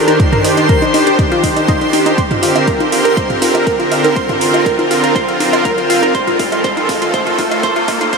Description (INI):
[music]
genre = progressive house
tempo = 121 BPM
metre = 4/4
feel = straight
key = unclear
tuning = A4 = 440 Hz
[part]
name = supersaw pad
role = sustained chords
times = 0.0-8.2 s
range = A2 to C5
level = -15 LUFS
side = right 1 dB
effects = sidechain pumping
[part]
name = glassy wavetable pluck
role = arpeggios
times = 0.0-8.2 s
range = Eb4 to C5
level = -15 LUFS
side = equal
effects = chorus, sidechain pumping, analog delay
[part]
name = backwards swelling texture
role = texture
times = 0.0-8.2 s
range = C5 to C6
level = -21 LUFS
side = equal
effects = built-in reverb, wide subtle chorus, sidechain pumping
[part]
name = electronic hi-hat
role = drums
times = 0.1-8.2 s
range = none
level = -24 LUFS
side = right 3 dB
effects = sidechain pumping on hats, studio reverb
[part]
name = electronic congas, toms and bongos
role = percussion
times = 0.1-8.1 s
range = none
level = -23 LUFS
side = right 3 dB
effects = overdrive, sidechain pumping on toms, studio reverb, sidechain pumping on perc
[part]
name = electronic kick drum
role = drums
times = 0.2-8.2 s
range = none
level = -18 LUFS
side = equal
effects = studio reverb
[part]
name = riser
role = sound effects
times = 4.9-8.2 s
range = none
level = -25 LUFS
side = equal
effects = none
[sound]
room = wet huge ambient reverb, RT60 7.6 s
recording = dreamy mix soaked in reverb, high-pass filter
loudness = -11 LUFS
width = side -4 dB against mid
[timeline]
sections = 0.0-8.2 A section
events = build-up 0.0-8.2; filter sweep on synth arpeggio sound 0.0-8.2; drum fill 2.2-8.2; riser 4.9-8.2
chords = 0.0 Ebmaj7; 2.2 Bb69; 6.1 F7/A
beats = | 0.20 0.69 1.19 1.69 | 2.18 2.68 3.17 3.67 | 4.16 4.66 5.16 5.65 | 6.15 6.64 7.14 7.63 | 8.13